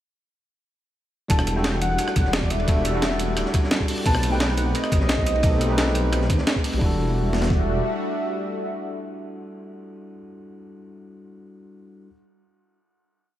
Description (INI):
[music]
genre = liquid drum and bass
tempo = 174 BPM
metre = 4/4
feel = straight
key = E minor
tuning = A4 = 440 Hz
[part]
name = warm velvety synth lead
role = melody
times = 1.3-10.2 s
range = D5 to A5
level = -30 LUFS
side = equal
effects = chorus, dub echo
[part]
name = bell-like tine electric piano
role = accompaniment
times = 1.3-12.1 s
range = G3 to B4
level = -29 LUFS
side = left 1 dB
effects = vintage 12-bit sampler grit, dub echo
[part]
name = lush unison pad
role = sustained chords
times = 2.0-10.2 s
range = G3 to F#4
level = -31 LUFS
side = equal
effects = chorus, phaser, sidechain pumping
[part]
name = dark detuned saw bass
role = bass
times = 1.3-7.8 s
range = D1 to D#2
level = -24 LUFS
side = equal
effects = none
[part]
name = breakbeat sampler-style drum kit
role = drums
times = 1.3-7.6 s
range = kick drum, snare drum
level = -22 LUFS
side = equal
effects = studio reverb
[part]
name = breakbeat sampler-style drum kit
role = drums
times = 1.3-6.7 s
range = hi-hat, rim click, snare drum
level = -26 LUFS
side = right 1 dB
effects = studio reverb
[part]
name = crunchy breakbeat drum kit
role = drums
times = 1.3-6.8 s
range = hi-hat, ride cymbal, snare drum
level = -32 LUFS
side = equal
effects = high-pass filter on cymbals, studio reverb, high-pass filter on hats, high-pass filter on snare, high-pass filter on room
[sound]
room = light reverb, studio reverb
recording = none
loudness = -20 LUFS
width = side -12 dB against mid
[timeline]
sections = 1.3-6.8 drop; 6.8-9.6 final chord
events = drop 1.3-6.8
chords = 1.3 Em11; 4.1 B7b9b13; 6.8 Em11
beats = | 1.30 1.64 1.99 2.33 | 2.68 3.02 3.37 3.71 | 4.06 4.40 4.75 5.09 | 5.44 5.78 6.13 6.47 | 6.82 7.16 7.51 7.85 | 8.20 8.54 8.88 9.23